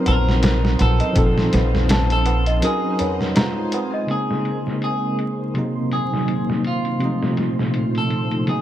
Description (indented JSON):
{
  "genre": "trip hop",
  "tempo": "82 BPM",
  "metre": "4/4",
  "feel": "swing 57% on 16ths",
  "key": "unclear",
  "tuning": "A4 = 441 Hz",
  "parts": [
    { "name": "bell-like tine electric piano", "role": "accompaniment", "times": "0.0-8.6 s", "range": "C3 to C5", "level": "-23 LUFS", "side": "equal", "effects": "tremolo, tape echo" },
    { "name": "string machine, cellos", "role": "sustained chords", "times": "0.0-8.6 s", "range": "Bb2 to Eb6", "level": "-27 LUFS", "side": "equal", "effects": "ensemble chorus" },
    { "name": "worn celesta", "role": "arpeggios", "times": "0.0-4.1 s", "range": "A4 to Bb5", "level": "-27 LUFS", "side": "left 2 dB", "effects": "tape echo" },
    { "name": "flickering grainy texture", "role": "texture", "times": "0.0-8.6 s", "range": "C4 to C6", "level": "-33 LUFS", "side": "right 2 dB", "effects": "built-in reverb" },
    { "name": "clean electric guitar", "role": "melody", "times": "0.1-8.6 s", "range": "F4 to Bb4", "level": "-27 LUFS", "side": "equal", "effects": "tape echo" },
    { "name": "upright bass", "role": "bass", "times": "0.1-2.6 s", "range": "Bb1", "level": "-18 LUFS", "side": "equal", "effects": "none" },
    { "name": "trip hop sampler-style drum kit", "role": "drums", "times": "0.1-8.6 s", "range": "hi-hat, kick drum, snare drum", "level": "-23 LUFS", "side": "equal", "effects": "low-pass filter on hats, low-pass filter on kick, low-pass filter on snare, low-pass filter on room" },
    { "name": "tabla", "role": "percussion", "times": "0.1-4.1 s", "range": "none", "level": "-31 LUFS", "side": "right 2 dB", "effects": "none" }
  ],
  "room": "light reverb, digital ambience",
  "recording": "dark, warm production, vinyl crackle",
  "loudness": "-18 LUFS",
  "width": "side -12 dB against mid",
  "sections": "0.0-4.1 A section; 4.1-8.6 B section",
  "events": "break 2.6-4.1; filter sweep on string machine 4.1-8.6",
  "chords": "0.0 Cm7b5/Bb; 1.2 F7/Bb; 2.6 Gb6; 3.4 Fm7; 4.1 Bbm11; 5.6 Cm7b5; 7.0 F7/Bb"
}